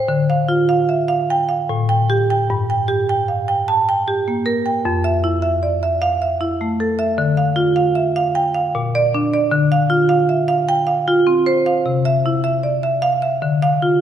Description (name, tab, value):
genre	classical, contemporary piece for solo marimba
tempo	77 BPM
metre	3/4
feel	rubato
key	D minor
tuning	A4 = 445 Hz
part	marimba with medium hard mallets	solo	0.0-14.0 s	F2 to A5	-15 LUFS	right 1 dB	none
room	wet recital hall reverb, RT60 1.6 s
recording	none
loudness	-15 LUFS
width	side -10 dB against mid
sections	0.1-14.0 A section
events	none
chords	0.1 Dmadd9; 1.7 Gsus2/A; 2.5 Gm; 4.9 Fmaj7; 7.2 Dmadd9; 8.8 Bb; 9.5 Dm7; 11.9 Cadd9; 13.4 Dm